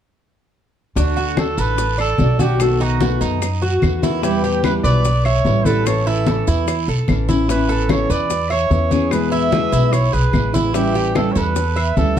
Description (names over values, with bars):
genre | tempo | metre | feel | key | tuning
latin, Cuban son and guajira | 147 BPM | 4/4 | straight | D major | A4 = 440 Hz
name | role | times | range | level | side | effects
warm trumpet | melody | 1.0-12.2 s | F#4 to E5 | -22 LUFS | right 2 dB | none
nylon-string guitar | accompaniment | 1.0-12.2 s | B2 to F#4 | -21 LUFS | left 3 dB | none
Cuban tres | arpeggios | 1.0-12.2 s | D4 to E5 | -23 LUFS | right 4 dB | none
upright bass | bass | 1.0-12.2 s | A1 to F#2 | -19 LUFS | equal | none
bongos | percussion | 1.0-12.2 s | none | -28 LUFS | left 9 dB | none
congas | percussion | 1.0-12.2 s | none | -23 LUFS | left 2 dB | none
guiro | percussion | 1.0-12.2 s | none | -36 LUFS | right 6 dB | none
maracas | percussion | 1.0-12.2 s | none | -35 LUFS | left 6 dB | none
claves | percussion | 1.4-12.0 s | none | -33 LUFS | left 4 dB | none
room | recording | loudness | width
light reverb | dark, warm production | -15 LUFS | side -9 dB against mid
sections
1.0-12.2 A section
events
none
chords
1.0 D; 2.6 B7; 4.2 Em; 5.9 A; 7.5 Aadd9; 9.1 E; 10.7 A7